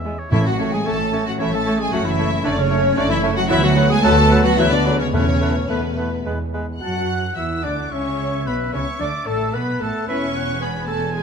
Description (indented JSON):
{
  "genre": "quick classical-period movement for symphony orchestra",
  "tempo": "112 BPM",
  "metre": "3/4",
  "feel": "rubato",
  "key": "unclear",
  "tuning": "A4 = 440 Hz",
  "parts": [
    { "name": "clear oboe", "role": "second line", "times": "0.0-11.2 s", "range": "B4 to A5", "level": "-30 LUFS", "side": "equal", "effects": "none" },
    { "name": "warm studio viola section", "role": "accompaniment", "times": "0.0-11.2 s", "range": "F#3 to F#4", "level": "-30 LUFS", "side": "equal", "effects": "none" },
    { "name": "mellow French horn section", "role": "sustained chords", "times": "0.0-10.3 s", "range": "F#3 to F#4", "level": "-27 LUFS", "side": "left 5 dB", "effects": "none" },
    { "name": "warm studio double bass section", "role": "bass", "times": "0.0-11.2 s", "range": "E1 to F#2", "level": "-23 LUFS", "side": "right 2 dB", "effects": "none" },
    { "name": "warm bassoon", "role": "accompaniment", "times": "0.1-6.7 s", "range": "F#3 to A3", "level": "-27 LUFS", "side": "right 2 dB", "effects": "none" },
    { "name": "rich studio violin section", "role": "melody", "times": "0.3-11.2 s", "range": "B4 to F#6", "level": "-28 LUFS", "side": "left 1 dB", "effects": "none" },
    { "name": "large flute ensemble", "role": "second line", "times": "0.3-11.2 s", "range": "G#4 to A5", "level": "-26 LUFS", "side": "left 1 dB", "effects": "none" },
    { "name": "warm clarinet", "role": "second line", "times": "0.3-11.2 s", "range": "B3 to F#5", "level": "-27 LUFS", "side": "left 3 dB", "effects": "none" },
    { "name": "warm studio violin section", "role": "second line", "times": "0.3-11.2 s", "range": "B3 to F#5", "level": "-29 LUFS", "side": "left 1 dB", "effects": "none" },
    { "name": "warm studio cello section", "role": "bass", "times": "0.3-11.2 s", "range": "E2 to A3", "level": "-25 LUFS", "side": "right 1 dB", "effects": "none" },
    { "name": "timpani", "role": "percussion", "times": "0.3-1.1, 5.1-5.9 s", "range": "E2 to A2", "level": "-23 LUFS", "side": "equal", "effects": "none" },
    { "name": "clear trumpet", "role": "stabs", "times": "6.8-10.3 s", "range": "A4 to F#5", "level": "-28 LUFS", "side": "right 2 dB", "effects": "none" }
  ],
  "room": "moderate recital hall reverb, RT60 1.7 s",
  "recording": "none",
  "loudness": "-17 LUFS",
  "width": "side -6 dB against mid",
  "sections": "0.0-6.8 A section; 6.8-11.2 B section",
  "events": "none",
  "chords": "0.3 A; 1.9 F#m; 3.5 Bm7/D; 5.1 Esus4; 6.3 E; 6.8 Dmaj9; 8.5 E5/B; 9.5 F#madd11; 10.1 E",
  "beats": "| 0.32 0.86 1.40 | 1.93 2.45 2.97 | 3.50 4.04 4.58 | 5.14 5.70 6.26 | 6.82 7.37 7.91 | 8.46 9.00 9.53 | 10.07 10.60 11.13"
}